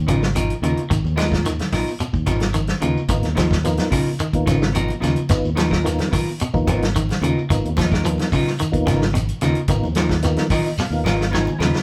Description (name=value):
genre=afrobeat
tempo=109 BPM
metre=4/4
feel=straight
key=G# dorian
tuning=A4 = 440 Hz
part: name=clean electric guitar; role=arpeggios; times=0.0-11.8 s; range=B2 to G#3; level=-26 LUFS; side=equal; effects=none
part: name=fingered electric bass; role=bass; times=0.0-11.8 s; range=G#1 to D#2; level=-25 LUFS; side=equal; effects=none
part: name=clean electric guitar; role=stabs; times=0.1-11.8 s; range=B3 to A#4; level=-28 LUFS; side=equal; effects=none
part: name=warm soul drum kit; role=drums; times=0.1-11.8 s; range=hi-hat, kick drum, snare drum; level=-25 LUFS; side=equal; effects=none
part: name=congas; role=percussion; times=0.1-11.7 s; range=none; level=-32 LUFS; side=equal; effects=none
part: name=shekere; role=percussion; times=0.1-11.8 s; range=none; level=-33 LUFS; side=equal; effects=none
part: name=percussive tonewheel organ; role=accompaniment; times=3.1-11.8 s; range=B3 to B5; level=-28 LUFS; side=equal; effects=slow rotary speaker, chorus vibrato
room=light reverb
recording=band playing live in one room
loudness=-20 LUFS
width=mono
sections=0.0-11.8 A section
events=tonewheel organ fill 10.2-11.8; drum fill 10.8-11.8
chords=0.0 G#m69